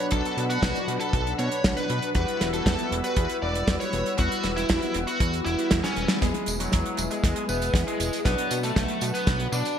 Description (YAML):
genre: italo disco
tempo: 118 BPM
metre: 4/4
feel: straight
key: unclear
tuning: A4 = 441 Hz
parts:
  - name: biting lead guitar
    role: melody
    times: 0.0-9.8 s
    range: F#3 to D5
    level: -28 LUFS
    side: equal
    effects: overdrive, low-pass filter, ping-pong delay
  - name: warm analog pad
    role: sustained chords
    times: 0.0-9.8 s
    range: D4 to E6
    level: -34 LUFS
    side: right 1 dB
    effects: chorus
  - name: chorused polysynth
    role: stabs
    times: 0.0-9.8 s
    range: B2 to G#4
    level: -32 LUFS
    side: left 3 dB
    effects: none
  - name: fat analog bass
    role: bass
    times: 0.1-9.6 s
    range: E1 to B2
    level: -31 LUFS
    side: equal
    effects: none
  - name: damped 70s drum kit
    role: drums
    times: 0.1-9.8 s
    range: hi-hat, snare drum, tambourine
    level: -28 LUFS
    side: right 2 dB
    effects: gated reverb
  - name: kick drum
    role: drums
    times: 0.1-9.4 s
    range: none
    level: -26 LUFS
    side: equal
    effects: none
room: moderate plate reverb, RT60 1.7 s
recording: bright 1980s-style digital production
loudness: -23 LUFS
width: side -8 dB against mid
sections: 0.0-6.2 A section; 6.2-9.8 B section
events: drum fill 5.8-6.2, 6.2-9.8; band accent 6.1; filter sweep on lead electric guitar 6.2-9.8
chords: 0.0 Bm; 2.2 Emadd9; 6.2 E; 8.3 Bm